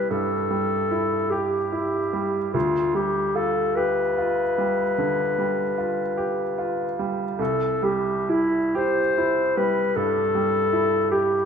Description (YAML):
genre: classical, romantic duo for clarinet and grand piano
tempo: 42-52 BPM (dotted quarters)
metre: 12/8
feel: rubato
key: C major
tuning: A4 = 440 Hz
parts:
  - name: mellow clarinet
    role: melody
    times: 0.0-11.5 s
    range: E4 to C5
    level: -23 LUFS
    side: left 3 dB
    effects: none
  - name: bright grand piano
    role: accompaniment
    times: 0.0-11.5 s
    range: C2 to G4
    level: -25 LUFS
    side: right 4 dB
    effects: none
room: wet recital hall reverb, RT60 1.5 s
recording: minimal, uncompressed stereo recording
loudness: -21 LUFS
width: side -7 dB against mid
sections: 0.0-11.5 A section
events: none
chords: 0.0 C; 2.5 G7/D; 7.4 C